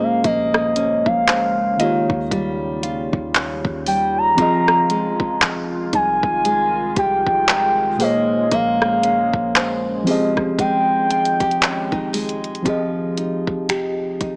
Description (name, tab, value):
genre	contemporary R&B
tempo	58 BPM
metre	4/4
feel	swing 58% on 16ths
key	F minor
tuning	A4 = 440 Hz
part	gliding portamento lead	melody	0.0-12.1 s	Eb5 to Bb5	-21 LUFS	equal	chorus
part	muted felt-like synth keys	accompaniment	0.0-14.4 s	Bb2 to Eb5	-26 LUFS	equal	chorus
part	deep dark ambient pad	sustained chords	0.0-12.6 s	Db3 to G5	-32 LUFS	equal	chorus, built-in reverb, sidechain pumping
part	nylon-string guitar	arpeggios	0.0-14.4 s	Eb3 to C5	-27 LUFS	equal	none
part	mallet-like synth pluck	texture	0.0-13.1 s	Eb5 to Bb5	-34 LUFS	equal	none
part	warm 808-style bass	bass	0.2-14.4 s	Eb1 to Eb2	-37 LUFS	equal	none
part	smooth R&B drum kit	drums	0.2-14.4 s	finger snaps, handclaps, hi-hat, kick drum, rim click	-24 LUFS	equal	none
room	light reverb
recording	small speaker sound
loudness	-19 LUFS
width	mono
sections	0.0-12.7 A section; 12.7-14.4 B section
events	none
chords	0.0 Bbm9; 1.8 Eb9; 4.4 Fm9; 8.0 Bbm9; 10.1 Fm9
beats	| 0.24 1.28 2.31 3.35 | 4.38 5.42 6.45 7.48 | 8.52 9.55 10.59 11.62 | 12.66 13.69